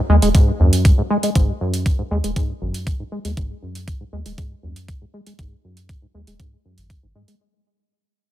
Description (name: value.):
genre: acid house.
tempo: 119 BPM.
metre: 4/4.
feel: straight.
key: unclear.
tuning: A4 = 440 Hz.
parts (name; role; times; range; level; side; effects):
acid bass, saw; riff; 0.1-7.3 s; F#2 to G#3; -22 LUFS; equal; analog chorus, sidechain pumping, ping-pong delay.
round analog bass; bass; 0.1-7.2 s; D#1 to G#2; -18 LUFS; equal; sidechain pumping.
electronic hi-hat; drums; 0.2-7.4 s; none; -29 LUFS; right 4 dB; none.
electronic kick drum; drums; 0.3-7.0 s; none; -18 LUFS; equal; none.
room: little or no reverb.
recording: none.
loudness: -16 LUFS.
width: side -13 dB against mid.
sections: 0.0-7.4 A section.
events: fade-out 0.0-7.4; filter sweep on acid bass 0.0-7.4.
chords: 0.0 G#5.